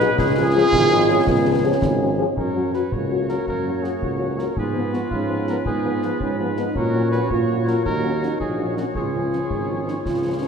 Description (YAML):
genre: military-style march for wind band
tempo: 109 BPM (dotted quarters)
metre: 6/8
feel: straight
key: F# major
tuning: A4 = 435 Hz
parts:
  - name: warm woodwind section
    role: second line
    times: 0.0-10.5 s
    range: F4 to C#5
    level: -28 LUFS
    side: left 2 dB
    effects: none
  - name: dark French horn section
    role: accompaniment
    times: 0.0-10.5 s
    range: F3 to G#4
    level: -27 LUFS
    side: left 5 dB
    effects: none
  - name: clear trombone section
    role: sustained chords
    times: 0.0-2.1 s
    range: D#4 to E#4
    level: -22 LUFS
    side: right 1 dB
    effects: none
  - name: warm tuba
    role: bass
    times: 0.0-10.5 s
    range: G#1 to A#2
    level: -23 LUFS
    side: right 1 dB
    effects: none
  - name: concert snare drum and concert bass drum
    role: drums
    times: 0.0-10.5 s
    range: none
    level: -30 LUFS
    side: left 1 dB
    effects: none
  - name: warm cornet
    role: melody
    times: 0.2-10.5 s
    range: F4 to C#5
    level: -28 LUFS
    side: equal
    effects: none
  - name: warm euphonium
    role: second line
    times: 0.7-10.5 s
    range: G#3 to E#4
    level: -26 LUFS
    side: right 4 dB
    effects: none
room: wet concert hall reverb, RT60 2.4 s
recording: minimal, uncompressed stereo recording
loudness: -18 LUFS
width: side -6 dB against mid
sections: 0.0-2.4 A section; 2.4-10.5 B section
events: none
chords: 0.2 C#; 2.4 F#; 4.6 Fdim/Ab; 6.8 F#/A#; 7.9 D#m7; 9.0 C#